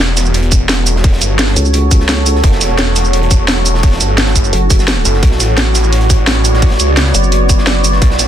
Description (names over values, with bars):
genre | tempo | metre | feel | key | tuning
dark technical drum and bass | 172 BPM | 4/4 | straight | F# phrygian | A4 = 440 Hz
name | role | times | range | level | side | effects
deep dark ambient pad | sustained chords | 0.0-8.3 s | B3 to D5 | -17 LUFS | right 1 dB | chorus, built-in reverb, sidechain pumping
snarling distorted saw bass | bass | 0.0-8.3 s | E1 to C#2 | -13 LUFS | equal | distortion, overdrive, sidechain pumping
crunchy breakbeat drum kit | drums | 0.0-8.3 s | hi-hat, snare drum | -24 LUFS | equal | high-pass filter on hats, studio reverb, high-pass filter on snare, high-pass filter on room
drum and bass drum kit | drums | 0.2-8.3 s | hi-hat, shaker, snare drum | -14 LUFS | right 1 dB | studio reverb
electronic kick drum | drums | 0.5-8.1 s | none | -10 LUFS | equal | studio reverb
vowel-sweep wobble bass | bass | 1.6-2.4, 4.5-5.0, 7.1-8.0 s | F#1 to C#2 | -13 LUFS | equal | chorus
room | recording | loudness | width
little or no reverb | dense, heavily limited modern master | -9 LUFS | side -10 dB against mid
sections
0.0-8.3 A section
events
none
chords
0.0 F#m; 5.2 Bm